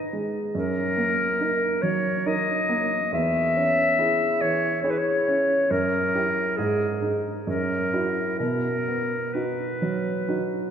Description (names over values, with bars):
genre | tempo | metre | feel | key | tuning
classical, romantic duo for clarinet and grand piano | 69 BPM | 3/4 | uneven beats, rubato | B major | A4 = 440 Hz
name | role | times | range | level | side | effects
clear clarinet | melody | 0.0-10.7 s | G#4 to E5 | -24 LUFS | left 2 dB | none
warm grand piano | accompaniment | 0.0-10.7 s | E2 to B4 | -26 LUFS | right 2 dB | none
room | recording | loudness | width
wet church reverb, RT60 3.5 s | recorded in a church or concert hall | -22 LUFS | side -8 dB against mid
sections
0.0-10.7 A section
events
none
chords
0.0 G#m; 0.5 D#m/F#; 3.1 C#m/E; 5.7 F#7b9; 6.6 G#5; 7.5 F#7; 8.4 B